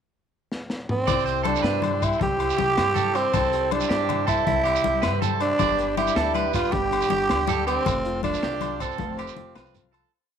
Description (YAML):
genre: highlife guitar band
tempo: 106 BPM (dotted quarters)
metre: 12/8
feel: straight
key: C major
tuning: A4 = 441 Hz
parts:
  - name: crunchy breakbeat drum kit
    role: drums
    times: 0.5-10.0 s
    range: hi-hat, kick drum, snare drum, toms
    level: -30 LUFS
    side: left 1 dB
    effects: none
  - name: growling tenor saxophone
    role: melody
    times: 0.9-9.9 s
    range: C4 to G4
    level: -24 LUFS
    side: right 2 dB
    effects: none
  - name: fingerpicked steel-string acoustic guitar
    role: accompaniment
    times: 1.1-10.4 s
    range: C3 to C5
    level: -33 LUFS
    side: left 13 dB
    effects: none
  - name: combo organ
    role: sustained chords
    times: 1.1-10.1 s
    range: D5 to C6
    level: -37 LUFS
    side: left 13 dB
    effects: none
  - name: electric guitar at the edge of break-up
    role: arpeggios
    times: 1.1-10.1 s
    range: G4 to D5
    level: -28 LUFS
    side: right 13 dB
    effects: slapback echo
  - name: upright bass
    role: bass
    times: 1.1-10.0 s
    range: F1 to G2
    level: -31 LUFS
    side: left 1 dB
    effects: none
  - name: agogo bells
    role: percussion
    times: 1.1-10.1 s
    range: none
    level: -33 LUFS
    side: left 16 dB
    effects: none
  - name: congas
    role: percussion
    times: 1.1-10.0 s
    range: none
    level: -33 LUFS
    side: left 15 dB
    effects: none
  - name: shekere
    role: percussion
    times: 1.1-9.8 s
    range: none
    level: -33 LUFS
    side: right 5 dB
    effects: none
room: light reverb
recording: 1960s-style stereo with parts hard left and right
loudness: -21 LUFS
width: side -8 dB against mid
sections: 0.0-1.1 pickup bar; 1.1-10.1 groove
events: drum fill 0.5-1.1; fade-out 7.9-10.1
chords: 0.0 N.C.; 1.1 C; 5.6 G; 7.9 F